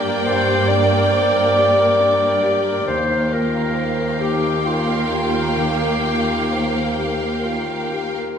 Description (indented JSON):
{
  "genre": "cinematic",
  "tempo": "42-46 BPM (dotted quarters)",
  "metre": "6/8",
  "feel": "rubato",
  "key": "unclear",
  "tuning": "A4 = 440 Hz",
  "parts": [
    { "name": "rich chamber violin section", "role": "melody", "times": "0.0-8.2 s", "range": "G5", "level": "-27 LUFS", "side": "left 3 dB", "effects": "none" },
    { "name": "clear symphonic violin section", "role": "second line", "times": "0.0-8.2 s", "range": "D5 to F5", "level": "-27 LUFS", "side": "right 1 dB", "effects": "none" },
    { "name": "bright concert grand piano", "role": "accompaniment", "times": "0.0-8.4 s", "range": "Eb2 to C5", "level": "-24 LUFS", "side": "left 2 dB", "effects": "none" },
    { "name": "warm symphonic viola section", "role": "accompaniment", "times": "0.0-8.2 s", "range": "Bb3", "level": "-26 LUFS", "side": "right 1 dB", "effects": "none" },
    { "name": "warm symphonic cello section", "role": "bass", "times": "0.0-8.2 s", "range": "Eb2 to G2", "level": "-24 LUFS", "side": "right 4 dB", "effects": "none" },
    { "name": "warm clarinet", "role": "second line", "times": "0.2-7.0 s", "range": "F4 to D5", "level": "-20 LUFS", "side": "left 1 dB", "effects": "none" }
  ],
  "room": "wet recital hall reverb, RT60 1.6 s",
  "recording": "minimal, uncompressed stereo recording",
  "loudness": "-16 LUFS",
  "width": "side -7 dB against mid",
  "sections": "0.0-8.4 A section",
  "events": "none",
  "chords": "0.0 Gm; 2.9 Ebadd9"
}